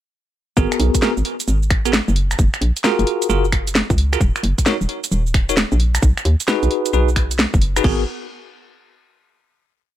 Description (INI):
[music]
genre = UK garage, two-step garage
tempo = 132 BPM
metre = 4/4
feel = swing 66% on 16ths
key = G# dorian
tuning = A4 = 440 Hz
[part]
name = bell-like tine electric piano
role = stabs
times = 0.6-8.0 s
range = B3 to C#5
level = -22 LUFS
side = equal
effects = medium stereo tremolo, tape echo
[part]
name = hollow knocking FM bass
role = bass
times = 0.6-8.1 s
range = D#1 to D#2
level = -18 LUFS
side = equal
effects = tube saturation
[part]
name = electronic kick drum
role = drums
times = 0.6-8.0 s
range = none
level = -18 LUFS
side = equal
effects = none
[part]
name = garage drum kit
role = drums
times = 0.6-8.0 s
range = crash cymbal, finger snaps, hi-hat, shaker, snare drum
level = -21 LUFS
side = equal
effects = none
[sound]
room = little or no reverb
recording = none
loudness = -15 LUFS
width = side -12 dB against mid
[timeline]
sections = 0.6-7.8 drop; 7.8-9.7 final chord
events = drop 0.6-7.8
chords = 0.6 G#m9; 2.2 F#maj9; 4.2 D#m; 6.0 B6; 7.8 G#m9